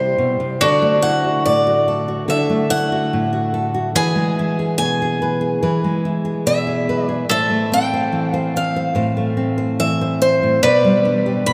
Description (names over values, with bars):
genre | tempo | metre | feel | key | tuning
acoustic folk duo or small band | 72 BPM | 4/4 | straight | A minor | A4 = 440 Hz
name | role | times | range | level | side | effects
picked old ladder-braced acoustic guitar | melody | 0.0-11.5 s | C5 to B5 | -21 LUFS | equal | slapback echo
bowl-back mandolin | second line | 0.0-11.5 s | F#4 to B4 | -26 LUFS | equal | slapback echo
nylon-string guitar | accompaniment | 0.0-11.5 s | A2 to C5 | -21 LUFS | equal | none
room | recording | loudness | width
wet cathedral reverb, RT60 5.4 s | in a vast, echoing space | -18 LUFS | mono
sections
0.0-11.5 A section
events
none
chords
0.0 C; 0.6 Dadd9; 3.9 E; 7.3 Am; 10.6 G/B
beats
| 0.59 1.43 2.27 3.10 | 3.94 4.78 5.61 6.45 | 7.29 8.12 8.96 9.80 | 10.63 11.47